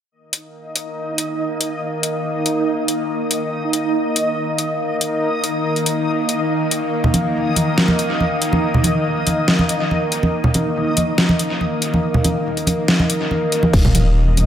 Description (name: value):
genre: deep dubstep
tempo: 141 BPM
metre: 4/4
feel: half-time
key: unclear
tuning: A4 = 441 Hz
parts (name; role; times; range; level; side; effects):
- bowed-like drone; sustained chords; 0.7-14.5 s; Eb3 to Bb3; -22 LUFS; equal; built-in reverb, phaser
- backwards swelling texture; texture; 0.7-13.7 s; Eb4 to Eb5; -22 LUFS; equal; built-in reverb
- dubstep drum kit; drums; 0.3-14.5 s; crash cymbal, hi-hat, snare drum; -20 LUFS; left 1 dB; overdrive, dub echo
- congas; percussion; 7.0-14.5 s; none; -20 LUFS; right 1 dB; dub echo
- deep soft wobble bass; bass; 13.7-14.5 s; Eb1; -15 LUFS; equal; chorus
- electronic kick drum; drums; 13.7-13.8 s; none; -15 LUFS; equal; overdrive
room: wet echo chamber reverb, RT60 1.5 s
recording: echo-heavy mix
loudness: -16 LUFS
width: side -10 dB against mid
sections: 0.1-13.7 A section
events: none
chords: 0.1 Eb5